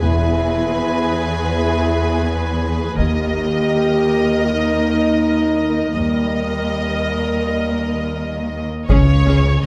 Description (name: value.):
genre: cinematic, epic orchestral film score.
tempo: 81 BPM.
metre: 4/4.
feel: straight.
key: unclear.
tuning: A4 = 441 Hz.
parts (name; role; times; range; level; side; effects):
warm symphonic violin section; melody; 0.0-9.6 s; Db5 to G#5; -32 LUFS; equal; none.
rich studio violin section; second line; 0.0-9.4 s; Db4 to Eb5; -27 LUFS; equal; none.
warm symphonic viola section; accompaniment; 0.0-9.3 s; Ab3 to Bb4; -29 LUFS; equal; none.
mellow French horn section; sustained chords; 0.0-9.7 s; G3 to Ab4; -24 LUFS; equal; none.
dark symphonic cello section; bass; 0.0-9.6 s; Eb2 to Db3; -23 LUFS; equal; none.
rich symphonic double bass section; bass; 0.0-9.6 s; E1 to Eb2; -23 LUFS; equal; none.
taiko ensemble; drums; 3.0-4.4, 8.9-9.6 s; none; -21 LUFS; equal; none.
mellow tuba; bass; 8.9-9.7 s; Db2; -24 LUFS; equal; none.
timpani; percussion; 8.9-9.7 s; Db3; -22 LUFS; equal; none.
room: moderate scoring stage reverb, RT60 1.9 s.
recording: lossy compression artefacts.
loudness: -18 LUFS.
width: mono.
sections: 0.0-8.9 A section.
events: none.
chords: 0.0 E; 3.0 Eb; 8.9 Db5.